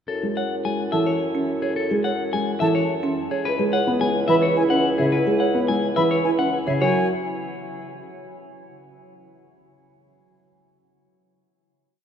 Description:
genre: classical, minimalist pattern music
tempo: 107 BPM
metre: 3/4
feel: straight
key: F# minor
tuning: A4 = 440 Hz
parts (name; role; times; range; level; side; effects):
- clean electric guitar; melody; 0.1-7.1 s; G#4 to G#5; -27 LUFS; left 5 dB; none
- dark clarinet; second line; 0.1-6.6 s; E4; -30 LUFS; equal; none
- mellow bassoon; bass; 0.1-7.1 s; C#2 to F#2; -27 LUFS; equal; none
- dark baby grand piano; accompaniment; 0.2-7.1 s; C#3 to B3; -26 LUFS; left 1 dB; none
- folk marimba with soft mallets; arpeggios; 0.2-7.1 s; C#4 to C#5; -25 LUFS; right 4 dB; none
- silver concert flute; arpeggios; 0.9-7.1 s; E5 to B5; -31 LUFS; left 2 dB; none
room: wet cathedral reverb, RT60 5.0 s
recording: in a vast, echoing space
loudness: -19 LUFS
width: side -8 dB against mid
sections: 0.1-6.8 A section; 6.8-8.5 final chord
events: none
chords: 0.1 F#m7; 3.4 C#m7; 6.8 F#5

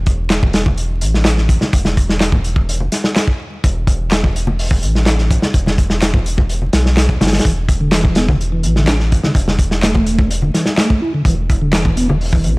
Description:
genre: breakbeat, breaks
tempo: 126 BPM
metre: 4/4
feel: straight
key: unclear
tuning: A4 = 440 Hz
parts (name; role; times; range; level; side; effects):
- saturated sub bass; bass; 0.0-12.6 s; E1 to B1; -17 LUFS; equal; none
- crunchy breakbeat drum kit; drums; 0.1-12.6 s; hi-hat, kick drum, snare drum; -15 LUFS; equal; none
- electronic handclaps; drums; 0.3-11.8 s; none; -26 LUFS; equal; none
- congas; percussion; 0.4-12.2 s; none; -22 LUFS; left 1 dB; none
- mellow tonewheel organ; riff; 7.4-12.6 s; D3 to E4; -18 LUFS; equal; chorus vibrato, fast rotary speaker, tape echo
room: small room ambience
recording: dry, gritty hardware recording, transformer saturation, vinyl crackle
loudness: -12 LUFS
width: side -26 dB against mid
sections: 0.0-12.6 A section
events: none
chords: none

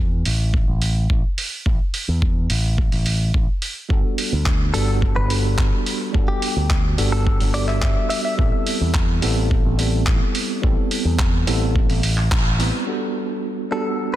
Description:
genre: nu-disco, nu disco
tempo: 107 BPM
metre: 4/4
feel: straight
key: unclear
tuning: A4 = 440 Hz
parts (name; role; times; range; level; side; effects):
- picked electric bass with an envelope filter; bass; 0.0-12.7 s; G1 to E2; -20 LUFS; equal; none
- dusty soul sampler-style drum kit; drums; 0.3-12.7 s; handclaps, hi-hat; -26 LUFS; right 1 dB; low-pass filter on hats, low-pass filter on snare, low-pass filter on room
- electronic kick drum; drums; 0.5-12.4 s; none; -20 LUFS; equal; none
- tine electric piano; accompaniment; 3.9-14.2 s; G3 to B4; -25 LUFS; right 1 dB; overdrive, fast stereo tremolo, vintage 12-bit sampler grit, sidechain pumping, ping-pong delay
- direct-recorded clean electric guitar; melody; 4.7-8.3, 13.7-14.2 s; G4 to E5; -27 LUFS; left 2 dB; spring reverb, ping-pong delay
room: digital ambience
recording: dense, heavily limited modern master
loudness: -18 LUFS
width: side -14 dB against mid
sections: 0.0-12.9 A section; 12.9-14.2 B section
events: band accent 12.3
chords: 0.0 A5; 3.9 Gmaj9; 8.4 Am7; 12.9 Gmaj9

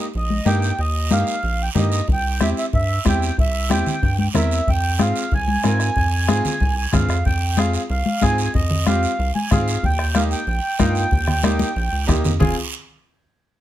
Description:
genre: latin, cumbia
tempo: 186 BPM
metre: 4/4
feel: straight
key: F minor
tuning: A4 = 440 Hz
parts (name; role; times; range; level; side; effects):
- mellow accordion; melody; 0.0-12.6 s; Eb5 to Ab5; -24 LUFS; right 1 dB; none
- bright upright piano; accompaniment; 0.0-12.6 s; Bb3 to Bb4; -25 LUFS; left 1 dB; none
- rubbery square bass; bass; 0.1-12.6 s; F1 to Ab2; -21 LUFS; right 1 dB; none
- guiro; percussion; 0.1-12.5 s; none; -31 LUFS; right 7 dB; none
- congas; percussion; 0.3-12.5 s; none; -22 LUFS; left 3 dB; none
- bombo; percussion; 2.1-12.5 s; none; -23 LUFS; left 1 dB; none
room: light reverb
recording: close, detailed microphones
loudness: -17 LUFS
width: side -13 dB against mid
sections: 0.0-7.3 A section; 7.3-12.4 B section; 12.4-13.6 C section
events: drum fill 11.4-12.4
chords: 0.0 Eb; 2.1 C; 4.7 Fm; 9.8 Eb; 12.4 Fm

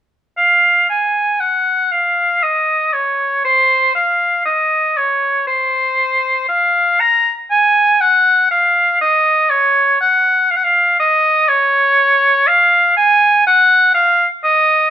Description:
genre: classical, baroque-style fantasia for unaccompanied oboe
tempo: 60 BPM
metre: 3/4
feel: rubato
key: unclear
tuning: A4 = 440 Hz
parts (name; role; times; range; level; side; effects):
- clear oboe; solo; 0.4-14.9 s; C5 to Bb5; -11 LUFS; equal; none
room: moderate stone room reverb, RT60 1.1 s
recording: minimal, uncompressed stereo recording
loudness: -11 LUFS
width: side -10 dB against mid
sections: 0.4-14.9 A section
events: none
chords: none

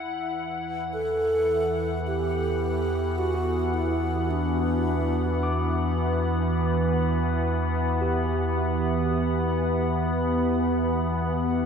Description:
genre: ambient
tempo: free time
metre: none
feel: none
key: E minor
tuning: A4 = 440 Hz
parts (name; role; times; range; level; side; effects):
- evolving wavetable pad; sustained chords; 0.0-11.7 s; E3 to F#5; -26 LUFS; equal; chorus, built-in reverb
- warm sub bass; bass; 0.0-11.7 s; E2; -29 LUFS; equal; none
- analog drone; drone; 4.1-11.7 s; E3 to B3; -33 LUFS; equal; chorus
- breathy mellow alto flute; melody; 0.9-5.9 s; D4 to A4; -28 LUFS; right 1 dB; ping-pong delay
- overdriven tine electric piano; arpeggios; 1.6-11.7 s; F#4 to D6; -35 LUFS; equal; medium tremolo, ping-pong delay
room: wet huge ambient reverb, RT60 8.4 s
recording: none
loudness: -23 LUFS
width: side -6 dB against mid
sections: 0.0-11.7 A section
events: fade-in on tine electric piano 0.0-11.7; fade-in on synth drone 0.0-11.7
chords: 0.0 Em7

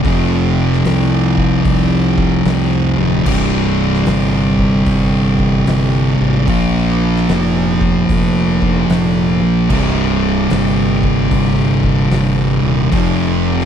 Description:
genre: stoner and doom metal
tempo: 75 BPM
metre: 4/4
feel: swing 65% on 8ths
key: unclear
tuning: A4 = 440 Hz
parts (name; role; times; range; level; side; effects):
- thick fuzz guitar; riff; 0.0-13.7 s; C2 to Bb3; -16 LUFS; left 8 dB; distortion
- thick fuzz guitar; riff; 0.0-13.7 s; C2 to Bb3; -16 LUFS; right 10 dB; distortion
- fuzz fingered electric bass; bass; 0.0-13.7 s; C1 to C2; -19 LUFS; equal; overdrive
- oversized low-tuned drum kit; drums; 0.0-13.7 s; crash cymbal, hi-hat, kick drum, snare drum; -22 LUFS; equal; none
room: little or no reverb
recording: dry, close 1970s-style studio recording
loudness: -12 LUFS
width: side -8 dB against mid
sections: 0.0-13.7 A section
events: none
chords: 0.0 F5; 3.3 C5; 6.5 Bb5; 9.7 C5; 12.9 F5

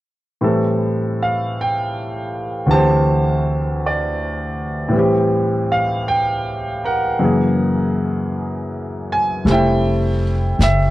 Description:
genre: jazz ballad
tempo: 53 BPM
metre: 4/4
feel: swing 68% on 8ths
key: unclear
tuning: A4 = 445 Hz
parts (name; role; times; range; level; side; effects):
- clear concert grand piano; accompaniment; 0.4-10.9 s; D2 to A5; -17 LUFS; equal; none
- upright bass; bass; 9.4-10.9 s; F1 to Gb1; -17 LUFS; equal; none
- vintage brush drum kit; drums; 9.5-10.9 s; brushed snare drum, hi-hat, snare drum; -26 LUFS; equal; none
room: small room ambience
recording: dry, close 1970s-style studio recording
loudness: -16 LUFS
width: side -16 dB against mid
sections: 0.4-9.5 A section; 9.5-10.9 B section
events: none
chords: 0.4 Am7; 2.7 D7sus4; 4.9 Am7; 7.2 Gb7; 9.5 Fmaj9

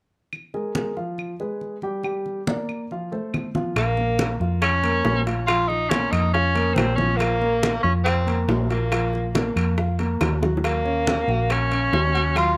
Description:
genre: Afro-Cuban jazz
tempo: 140 BPM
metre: 4/4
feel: straight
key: Bb minor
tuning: A4 = 440 Hz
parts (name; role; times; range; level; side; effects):
- claves; percussion; 0.3-12.6 s; none; -35 LUFS; equal; none
- congas; percussion; 0.3-12.6 s; none; -31 LUFS; equal; none
- warm grand piano; accompaniment; 0.5-12.6 s; F3 to G5; -30 LUFS; equal; none
- warm tenor saxophone; melody; 3.8-12.6 s; Bb3 to F4; -26 LUFS; equal; tape echo
- hollow-body short-scale fingered electric bass; bass; 3.8-12.6 s; Bb1 to F2; -26 LUFS; equal; none
- bongos; percussion; 3.8-12.6 s; none; -32 LUFS; equal; none
- timbales; percussion; 3.8-12.6 s; none; -33 LUFS; equal; none
room: light reverb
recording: none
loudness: -23 LUFS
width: mono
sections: 0.3-3.8 A section; 3.8-12.6 B section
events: drum fill 10.4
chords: 0.3 Bb5; 1.2 Fmadd9; 2.0 Gm; 2.9 F; 3.8 Bbm; 10.6 Ebm7

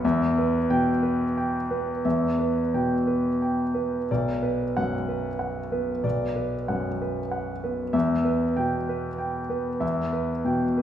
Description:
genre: neoclassical minimalist piano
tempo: 57-64 BPM (dotted quarters)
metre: 6/8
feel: rubato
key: B minor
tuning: A4 = 440 Hz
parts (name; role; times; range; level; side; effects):
- warm concert grand piano; solo; 0.0-10.8 s; B1 to G5; -23 LUFS; equal; none
room: wet recital hall reverb, RT60 1.5 s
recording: heard from further back in the room, studio ambience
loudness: -23 LUFS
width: side -10 dB against mid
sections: 0.0-4.1 A section; 4.1-10.8 A section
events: none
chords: 0.0 Em; 4.1 Bm; 7.9 Em

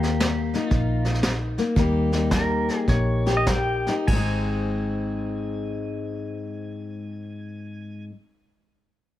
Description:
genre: honky-tonk and classic country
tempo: 95-119 BPM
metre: 4/4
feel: swing 65% on 8ths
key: Ab major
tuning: A4 = 440 Hz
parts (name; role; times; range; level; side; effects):
- pedal steel guitar; melody; 0.0-8.0 s; Bb3 to Ab5; -28 LUFS; left 2 dB; none
- picked steel-string acoustic guitar; accompaniment; 0.0-8.2 s; Ab2 to Bb4; -26 LUFS; left 2 dB; none
- vintage muted fingered electric bass; bass; 0.0-8.0 s; Ab1 to Eb2; -26 LUFS; equal; none
- vintage brush drum kit; drums; 0.0-4.3 s; crash cymbal, hi-hat, kick drum, snare drum; -26 LUFS; right 1 dB; none
room: little or no reverb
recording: none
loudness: -21 LUFS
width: side -13 dB against mid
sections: 0.0-1.8 A section; 1.8-4.1 B section; 4.1-9.1 C section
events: slowing down 0.0-4.1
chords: 0.0 Eb; 4.1 Ab

